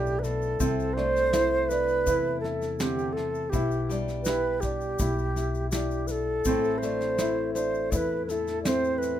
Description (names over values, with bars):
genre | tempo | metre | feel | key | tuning
acoustic folk duo or small band | 82 BPM | 4/4 | straight | A minor | A4 = 440 Hz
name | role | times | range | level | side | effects
wooden flute | melody | 0.0-9.2 s | G4 to D5 | -27 LUFS | right 2 dB | none
nylon-string guitar | accompaniment | 0.0-9.2 s | A2 to A4 | -33 LUFS | left 7 dB | none
warm upright piano | arpeggios | 0.0-9.2 s | C4 to E4 | -33 LUFS | right 3 dB | none
upright bass | bass | 0.0-9.2 s | A1 to E2 | -33 LUFS | equal | none
tube shaker | percussion | 0.1-9.2 s | none | -41 LUFS | left 6 dB | none
soft brush drum kit | drums | 0.2-9.1 s | kick drum, snare drum | -34 LUFS | equal | none
room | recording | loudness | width
light reverb | minimal, uncompressed stereo recording | -24 LUFS | side -11 dB against mid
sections
0.0-9.2 A section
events
none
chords
0.0 Esus4/B; 0.6 Amadd9/C; 3.5 Em/B; 6.5 Am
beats
| 0.61 1.34 2.07 2.80 | 3.53 4.27 5.00 5.73 | 6.46 7.20 7.93 8.66